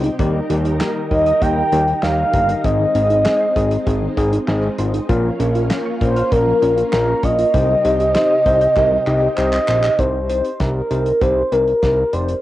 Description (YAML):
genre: synth-pop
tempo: 98 BPM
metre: 4/4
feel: straight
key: unclear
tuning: A4 = 440 Hz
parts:
  - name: bell-like tine electric piano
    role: accompaniment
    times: 0.0-12.3 s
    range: G3 to Eb5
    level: -23 LUFS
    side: left 3 dB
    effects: auto-pan, cassette tape
  - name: ensemble organ-string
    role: sustained chords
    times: 0.0-10.0 s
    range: C3 to Bb4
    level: -25 LUFS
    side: equal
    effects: ensemble chorus, cassette tape
  - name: soft round pluck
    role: arpeggios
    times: 0.0-9.9 s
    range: Eb3 to G6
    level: -28 LUFS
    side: right 3 dB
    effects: chorus, cassette tape, analog delay
  - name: fat analog bass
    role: bass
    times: 0.0-12.3 s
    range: F1 to Eb2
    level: -20 LUFS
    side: equal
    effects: tube saturation
  - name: damped 70s drum kit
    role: drums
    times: 0.0-12.4 s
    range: handclaps, hi-hat, kick drum, snare drum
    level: -23 LUFS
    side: equal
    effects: cassette tape
  - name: mellow horn-like synth lead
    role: melody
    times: 1.1-12.4 s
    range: Bb4 to G5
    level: -16 LUFS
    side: equal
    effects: chorus, phaser, cassette tape
room: moderate spring reverb, RT60 1.9 s, studio ambience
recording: home recording on cassette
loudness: -14 LUFS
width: side -15 dB against mid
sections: 0.0-10.0 A section; 10.0-12.4 B section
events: drum fill 8.8-10.0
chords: 0.2 Eb; 2.6 Ab; 5.1 Bbm; 7.5 Cm